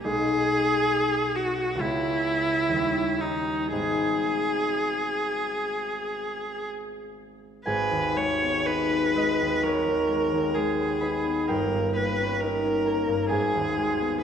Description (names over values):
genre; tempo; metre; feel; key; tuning
classical, romantic duo for viola and harp; 57-69 BPM; 4/4; rubato; G# minor; A4 = 441 Hz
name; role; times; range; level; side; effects
clear viola; melody; 0.0-14.2 s; D#4 to C#5; -25 LUFS; equal; none
concert harp; accompaniment; 0.0-14.2 s; G1 to D#6; -27 LUFS; left 1 dB; none
room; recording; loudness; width
wet concert hall reverb, RT60 2.3 s; minimal, uncompressed stereo recording; -23 LUFS; side -8 dB against mid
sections
0.0-7.7 A section; 7.7-14.2 B section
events
none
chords
0.0 G#m/B; 1.8 C#m7; 2.7 D#7b9; 3.7 G#m; 11.5 D#7/G; 13.3 G#m